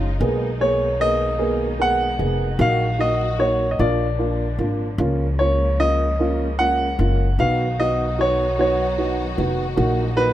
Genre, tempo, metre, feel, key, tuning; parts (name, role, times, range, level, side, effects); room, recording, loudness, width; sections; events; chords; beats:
six-eight pop ballad; 50 BPM (dotted quarters); 6/8; straight; Eb minor; A4 = 440 Hz
dark upright piano; accompaniment; 0.0-10.3 s; Bb3 to Ab4; -24 LUFS; right 2 dB
rich studio string section; sustained chords; 0.0-10.3 s; Bb2 to Gb4; -31 LUFS; left 1 dB
upright bass; bass; 0.0-10.3 s; F1 to Db2; -23 LUFS; left 1 dB
clear concert grand piano; melody; 0.6-10.3 s; Cb5 to Gb5; -21 LUFS; equal
light reverb, studio reverb; rough home demo mix; -18 LUFS; side -13 dB against mid
0.0-10.3 A section
0.2 Abmadd9/Cb; 2.6 Ebm/Bb; 3.8 Bb; 5.0 Db6; 7.4 B; 9.8 Ebm/Bb
| 0.21 1.40 | 2.60 3.79 | 4.99 6.20 | 7.39 8.59 | 9.77